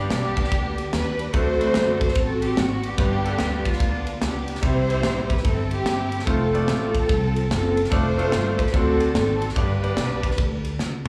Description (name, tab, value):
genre	uptempo gospel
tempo	146 BPM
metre	4/4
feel	swing 64% on 8ths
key	unclear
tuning	A4 = 438 Hz
part	warm studio string section	melody	0.0-10.8 s	B3 to C5	-27 LUFS	equal	slapback echo
part	clear baby grand piano	accompaniment	0.0-10.2 s	G2 to B5	-29 LUFS	equal	slapback echo
part	upright bass	bass	0.0-11.1 s	F1 to F#2	-28 LUFS	equal	none
part	crisp fusion drum kit	drums	0.1-11.1 s	kick drum, ride cymbal, snare drum, toms	-28 LUFS	equal	none
room	light reverb, small room ambience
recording	live gig heard through the venue's PA, club reverb, small room reverb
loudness	-22 LUFS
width	mono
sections	0.0-11.1 A section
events	drum fill 10.8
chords	0.0 G; 1.3 D7; 3.0 G; 4.6 C; 6.3 F; 7.9 Dm/F; 8.7 D7; 9.6 G